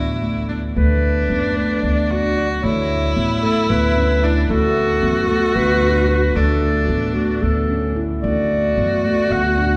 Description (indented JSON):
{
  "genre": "contemporary instrumental, chamber music in an uneven meter",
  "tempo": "225 BPM (eighths)",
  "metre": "7/8",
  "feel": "straight",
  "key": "unclear",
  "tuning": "A4 = 442 Hz",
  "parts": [
    { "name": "mellow clarinet", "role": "melody", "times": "0.0-9.8 s", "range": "F#4 to F#5", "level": "-24 LUFS", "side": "equal", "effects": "none" },
    { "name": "clear viola", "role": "second line", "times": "0.0-9.8 s", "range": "D4 to F#4", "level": "-25 LUFS", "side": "equal", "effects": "none" },
    { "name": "handpan", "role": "arpeggios", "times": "0.0-9.8 s", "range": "A3 to F#4", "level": "-24 LUFS", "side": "equal", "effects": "none" },
    { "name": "upright bass", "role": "bass", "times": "0.0-9.8 s", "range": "A1 to F#2", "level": "-23 LUFS", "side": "equal", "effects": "none" }
  ],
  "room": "wet church reverb, RT60 3.8 s",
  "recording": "recorded in a church or concert hall",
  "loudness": "-18 LUFS",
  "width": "mono",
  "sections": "0.8-9.8 A section",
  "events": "none",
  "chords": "0.0 D5; 0.8 Bm7/D; 2.6 D5; 4.5 Bm7/D; 6.4 D5; 8.2 Bm7/D"
}